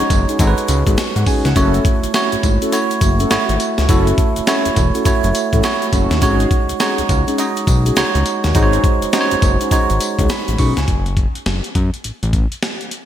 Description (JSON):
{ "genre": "R&B, new jack swing", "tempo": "103 BPM", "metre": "4/4", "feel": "swing 63% on 16ths", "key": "unclear", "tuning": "A4 = 441 Hz", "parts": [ { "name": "bell-like tine electric piano", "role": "accompaniment", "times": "0.0-11.1 s", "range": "G#3 to C#6", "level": "-18 LUFS", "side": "right 4 dB", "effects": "fast stereo tremolo" }, { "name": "mellow synth brass", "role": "stabs", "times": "0.0-10.8 s", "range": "C#4 to A4", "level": "-23 LUFS", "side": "left 4 dB", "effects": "chorus" }, { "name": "fat analog bass", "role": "bass", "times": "0.0-12.5 s", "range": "E1 to G#2", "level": "-18 LUFS", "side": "left 1 dB", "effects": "none" }, { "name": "breakbeat sampler-style drum kit", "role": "drums", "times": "0.1-13.1 s", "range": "hi-hat, kick drum, snare drum, tambourine", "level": "-18 LUFS", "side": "left 1 dB", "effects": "gated reverb" }, { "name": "tube shaker", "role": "percussion", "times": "0.3-10.9 s", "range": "none", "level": "-35 LUFS", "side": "left 11 dB", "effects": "none" } ], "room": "moderate lush hall reverb, RT60 2.3 s", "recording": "bright 1980s-style digital production", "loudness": "-13 LUFS", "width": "side -11 dB against mid", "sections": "0.0-10.9 A section; 10.9-13.1 B section", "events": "none", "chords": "0.0 G#7sus4; 1.6 F#m7; 6.2 G#7sus4; 10.9 F#m" }